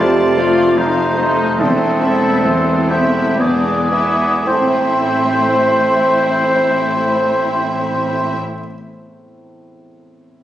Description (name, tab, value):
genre	classical, romantic movement for piano and orchestra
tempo	54-76 BPM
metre	3/4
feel	rubato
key	A minor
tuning	A4 = 440 Hz
part	clear concert grand piano	melody	0.0-10.4 s	E1 to E5	-23 LUFS	left 1 dB	none
part	rich studio violin section	melody	0.0-8.4 s	C5 to A5	-30 LUFS	left 2 dB	none
part	mellow hollow silver concert flute	second line	0.0-8.4 s	C6 to D6	-23 LUFS	left 1 dB	none
part	warm clarinet	second line	0.0-8.4 s	B3 to C5	-20 LUFS	left 1 dB	none
part	warm oboe	second line	0.0-8.4 s	G4 to D5	-21 LUFS	equal	none
part	warm studio violin section	second line	0.0-8.4 s	C4 to F4	-27 LUFS	equal	none
part	clear bassoon	accompaniment	0.0-8.4 s	A3 to C4	-20 LUFS	right 2 dB	none
part	rich studio viola section	accompaniment	0.0-8.4 s	E3 to B3	-28 LUFS	right 1 dB	none
part	mellow French horn section	sustained chords	0.0-8.4 s	A3 to G4	-21 LUFS	left 1 dB	none
part	rich studio cello section	bass	0.0-8.4 s	E2 to A2	-26 LUFS	right 1 dB	none
part	rich studio double bass section	bass	0.0-8.4 s	E1 to A1	-27 LUFS	right 2 dB	none
room	wet scoring stage reverb, RT60 1.4 s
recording	recorded on a phone in the room, club reverb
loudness	-13 LUFS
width	side -12 dB against mid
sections	0.0-4.5 A section; 4.5-7.6 B section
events	slowing down 0.0-4.5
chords	0.0 F; 0.8 F7; 1.6 Am/E; 3.4 E7; 4.5 Am